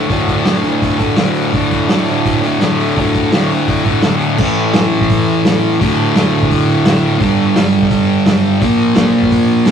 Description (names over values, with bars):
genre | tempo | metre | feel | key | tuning
garage rock duo or trio | 169 BPM | 4/4 | straight | unclear | A4 = 440 Hz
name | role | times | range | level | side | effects
thick fuzz guitar | riff | 0.0-9.7 s | D2 to Bb3 | -12 LUFS | equal | distortion
vintage drum kit | drums | 0.1-9.7 s | crash cymbal, hi-hat, kick drum, snare drum | -16 LUFS | equal | none
room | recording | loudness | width
moderate booth ambience, RT60 0.2 s | rough rehearsal-room recording, tube saturation | -11 LUFS | side -8 dB against mid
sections
0.0-4.4 A section; 4.4-9.7 B section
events
none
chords
0.0 D5; 4.4 A5; 5.8 D5; 7.2 G5; 8.6 Bb5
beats
| 0.10 0.45 0.81 1.17 | 1.53 1.89 2.25 2.61 | 2.96 3.32 3.68 4.04 | 4.39 4.75 5.10 5.45 | 5.81 6.16 6.51 6.86 | 7.21 7.57 7.92 8.27 | 8.62 8.97 9.31 9.66